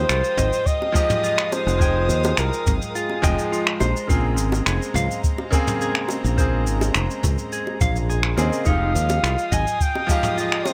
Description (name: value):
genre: sunset chillout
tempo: 105 BPM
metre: 4/4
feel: straight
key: F minor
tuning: A4 = 440 Hz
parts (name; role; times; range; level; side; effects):
- mellow flugelhorn; melody; 0.0-3.8, 8.4-10.7 s; Ab4 to Ab5; -26 LUFS; equal; vintage 12-bit sampler grit, tape echo
- bright grand piano; accompaniment; 0.0-10.7 s; Db3 to G5; -30 LUFS; equal; tape echo
- warm studio string section; sustained chords; 0.0-10.7 s; Ab3 to Eb6; -35 LUFS; equal; none
- fingered electric bass; bass; 0.0-9.6 s; F1 to Eb2; -24 LUFS; equal; none
- clean electric guitar; arpeggios; 0.1-10.6 s; Eb4 to F5; -32 LUFS; equal; tape echo
- vintage brush drum kit; drums; 0.1-10.7 s; finger snaps, shaker, toms; -29 LUFS; equal; none
- electronic kick drum; drums; 0.4-10.2 s; none; -24 LUFS; equal; none
- bongos; percussion; 0.8-10.7 s; none; -30 LUFS; equal; none
room: light reverb, small room ambience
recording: none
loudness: -21 LUFS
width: mono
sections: 0.0-10.7 A section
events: none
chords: 0.0 Fm9; 3.8 Bbm9; 8.7 Fm9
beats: 0.09 0.66 1.24 | 1.81 2.38 2.95 3.52 | 4.09 4.66 5.24 5.81 | 6.38 6.95 7.52 8.09 | 8.66 9.23 9.81 10.38